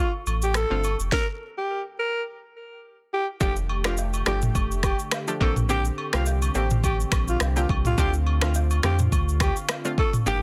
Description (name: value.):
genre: afrobeats.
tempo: 105 BPM.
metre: 4/4.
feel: swing 55% on 16ths.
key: unclear.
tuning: A4 = 440 Hz.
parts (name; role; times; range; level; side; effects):
breathy alto saxophone; melody; 0.0-10.4 s; F4 to Bb4; -31 LUFS; equal; digital delay, plate reverb.
warm sub bass; bass; 0.3-10.4 s; F1 to F2; -27 LUFS; equal; none.
afro-pop drum kit; drums; 0.3-10.4 s; finger snaps, kick drum, rim click, shaker, snare drum, toms; -28 LUFS; equal; soft clipping on snare.
agogo bells and woodblock; percussion; 0.3-10.1 s; none; -37 LUFS; equal; none.
analog pluck; accompaniment; 0.7-10.4 s; D3 to G4; -34 LUFS; equal; chorus, plate reverb.
warm analog pad; sustained chords; 3.4-10.4 s; D3 to G4; -38 LUFS; equal; chorus, plate reverb.
room: light reverb.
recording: dense, heavily limited modern master.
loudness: -24 LUFS.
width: mono.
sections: 0.0-3.4 A section; 3.4-10.4 B section.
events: stop 1.1-3.4.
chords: 0.0 Dm7; 1.1 N.C.; 3.4 F69; 5.4 Bb69; 8.0 Dm7.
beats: 0.55 | 1.12 1.69 2.26 2.84 | 3.41 3.98 4.55 5.12 | 5.69 6.26 6.84 7.41 | 7.98 8.55 9.12 9.69 | 10.26.